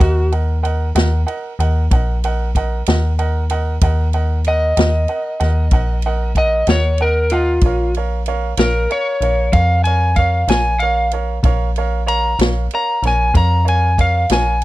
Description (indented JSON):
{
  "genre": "slow blues",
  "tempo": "63 BPM (dotted quarters)",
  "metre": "12/8",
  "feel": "straight",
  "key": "Bb minor",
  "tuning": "A4 = 444 Hz",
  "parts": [
    { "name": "electric slide guitar", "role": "melody", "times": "0.0-14.6 s", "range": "F4 to Bb5", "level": "-17 LUFS", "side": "equal", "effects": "none" },
    { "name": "clear upright piano", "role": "accompaniment", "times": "0.0-14.5 s", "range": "Bb4 to Ab5", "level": "-24 LUFS", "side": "right 4 dB", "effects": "none" },
    { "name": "metallic FM bass", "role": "bass", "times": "0.0-14.6 s", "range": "Bb1 to F2", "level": "-17 LUFS", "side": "equal", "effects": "none" },
    { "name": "swinging big-band drum kit", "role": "drums", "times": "0.0-14.6 s", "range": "kick drum, ride cymbal, snare drum", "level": "-16 LUFS", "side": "equal", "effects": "none" }
  ],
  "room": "little or no reverb",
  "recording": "dry, close 1970s-style studio recording",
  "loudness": "-14 LUFS",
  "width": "side -17 dB against mid",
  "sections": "0.0-14.6 A section",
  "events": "electric slide guitar solo 0.0-14.6",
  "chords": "0.0 Ebm; 7.6 Bbm",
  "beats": "| 0.01 0.96 1.92 2.87 | 3.83 4.78 5.73 6.68 | 7.63 8.59 9.54 10.49 | 11.44 12.39 13.35 14.30"
}